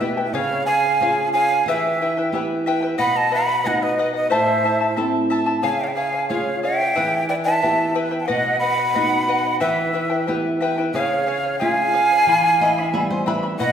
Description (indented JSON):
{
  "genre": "andean folk, Andean ensemble",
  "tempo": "90 BPM",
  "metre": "2/4",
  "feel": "straight",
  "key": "unclear",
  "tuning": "A4 = 440 Hz",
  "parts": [
    { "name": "breathy quena", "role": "melody", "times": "0.0-13.7 s", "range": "D#5 to B5", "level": "-20 LUFS", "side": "equal", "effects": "none" },
    { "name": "breathy bright large quena", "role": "second line", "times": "0.0-13.7 s", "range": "B4 to F#5", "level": "-25 LUFS", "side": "right 3 dB", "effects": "none" },
    { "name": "charango", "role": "accompaniment", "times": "0.0-13.7 s", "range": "E4 to B5", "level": "-24 LUFS", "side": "left 2 dB", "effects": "none" },
    { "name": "flamenco guitar", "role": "accompaniment", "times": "0.0-13.7 s", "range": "A2 to E5", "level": "-25 LUFS", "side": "right 1 dB", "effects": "none" }
  ],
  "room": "wet recital hall reverb, RT60 1.5 s",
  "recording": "recorded in a church or concert hall",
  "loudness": "-17 LUFS",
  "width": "side -8 dB against mid",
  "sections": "0.3-10.9 A section; 10.9-13.7 A section",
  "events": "nylon-string guitar fill 12.3-13.6",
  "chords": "0.3 C#; 1.7 Em; 3.0 B; 4.3 Am; 5.6 C#; 7.0 Em; 8.3 B; 9.6 Em; 10.9 C#; 12.3 Em",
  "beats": "| 0.34 1.00 | 1.67 2.33 | 2.99 3.65 | 4.31 4.97 | 5.63 6.30 | 6.96 7.62 | 8.29 8.95 | 9.61 10.28 | 10.94 11.61 | 12.27 12.93 | 13.60"
}